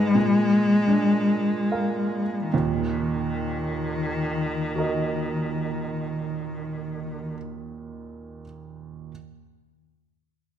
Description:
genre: classical, romantic duo for cello and grand piano.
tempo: 22-30 BPM (dotted quarters).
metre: 6/8.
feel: rubato.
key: Eb minor.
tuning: A4 = 440 Hz.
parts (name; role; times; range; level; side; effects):
rich cello; melody; 0.0-7.3 s; Eb3 to Ab3; -24 LUFS; left 2 dB; none.
clear grand piano; accompaniment; 0.0-9.1 s; Eb2 to Ab5; -28 LUFS; right 5 dB; none.
room: moderate scoring stage reverb, RT60 1.6 s.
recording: close, detailed microphones.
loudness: -22 LUFS.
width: side -10 dB against mid.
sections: 0.0-2.5 A section; 2.5-6.9 B section.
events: slowing down 0.0-2.5.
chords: 0.1 Bb7; 2.5 Ebm.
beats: 0.14 | 2.51 4.75.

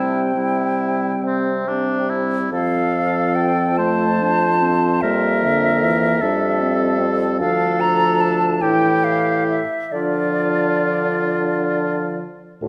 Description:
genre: classical, slow romantic movement for wind quintet.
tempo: 44-51 BPM (dotted quarters).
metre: 6/8.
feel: rubato.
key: F major, D minor from 7.4 s.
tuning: A4 = 440 Hz.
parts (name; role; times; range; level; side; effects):
silver concert flute; melody; 0.0-12.2 s; D5 to Bb5; -24 LUFS; equal; none.
warm oboe; second line; 0.0-12.3 s; C4 to C5; -26 LUFS; equal; none.
bright clarinet; accompaniment; 0.0-12.7 s; A3 to F4; -27 LUFS; equal; none.
mellow French horn; accompaniment; 0.0-12.7 s; A2 to G3; -27 LUFS; equal; none.
mellow bassoon; bass; 0.0-12.7 s; D2 to D3; -25 LUFS; equal; none.
room: wet scoring stage reverb, RT60 1.6 s.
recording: none.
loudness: -19 LUFS.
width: mono.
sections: 0.0-12.6 A section.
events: none.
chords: 0.0 C; 2.5 F; 5.0 Edim/F; 6.2 F; 7.4 Dm; 8.6 A5; 9.9 Dm.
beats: 1.24 | 2.52 3.79 | 5.03 6.22 | 7.41 8.62 | 9.93 11.28 | 12.63.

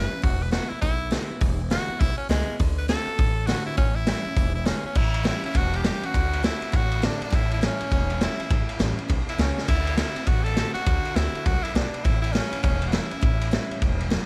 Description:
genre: rockabilly.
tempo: 203 BPM.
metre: 4/4.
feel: swing 62% on 8ths.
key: A mixolydian.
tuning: A4 = 440 Hz.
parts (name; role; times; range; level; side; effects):
raspy tenor saxophone; melody; 0.0-13.8 s; G#3 to B4; -32 LUFS; equal; tape echo.
picked steel-string acoustic guitar; accompaniment; 0.0-14.3 s; E2 to F#4; -36 LUFS; equal; none.
upright bass; bass; 0.0-14.1 s; E1 to D2; -29 LUFS; equal; none.
vintage drum kit; drums; 0.2-14.2 s; crash cymbal, hi-hat, kick drum, ride cymbal, snare drum; -27 LUFS; equal; none.
room: light reverb.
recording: none.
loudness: -24 LUFS.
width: mono.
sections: 0.0-5.0 A section; 5.0-14.3 B section.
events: tenor saxophone solo 0.0-5.0; drum fill 9.5.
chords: 0.2 E7; 2.6 D7; 3.8 A7; 4.4 E7; 5.0 A7; 6.1 D7; 7.3 A7; 9.7 D7; 12.0 A7.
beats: | 0.24 0.54 0.83 1.13 | 1.42 1.72 2.01 2.31 | 2.60 2.90 3.19 3.49 | 3.78 4.08 4.37 4.67 | 4.96 5.25 5.55 5.84 | 6.14 6.44 6.73 7.03 | 7.32 7.62 7.91 8.21 | 8.50 8.80 9.10 9.39 | 9.69 9.98 10.28 10.57 | 10.87 11.16 11.45 11.75 | 12.04 12.34 12.63 12.93 | 13.22 13.52 13.81 14.11.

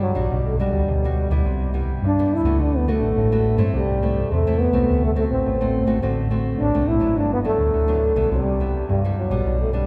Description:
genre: samba and choro.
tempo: 105 BPM.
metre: 4/4.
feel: straight.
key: G major.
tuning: A4 = 439 Hz.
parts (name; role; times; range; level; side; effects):
breathy trombone; melody; 0.0-9.9 s; F#3 to E4; -24 LUFS; equal; none.
nylon-string guitar; accompaniment; 0.0-9.9 s; G2 to F#4; -28 LUFS; equal; none.
hollow-body short-scale fingered electric bass; bass; 0.0-9.8 s; G1 to G2; -24 LUFS; equal; none.
room: wet cathedral reverb, RT60 6.2 s.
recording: recorded in a church or concert hall.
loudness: -21 LUFS.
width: mono.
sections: 0.0-9.9 A section.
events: none.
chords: 0.3 Gmaj7/B; 1.5 Cmaj7; 2.6 D6; 3.7 Am/C; 4.9 D7; 7.2 Gmaj7; 8.3 Cmaj7.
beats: | 0.31 0.89 1.46 2.03 | 2.60 3.17 3.75 4.32 | 4.89 5.46 6.03 6.60 | 7.18 7.75 8.32 8.89 | 9.46.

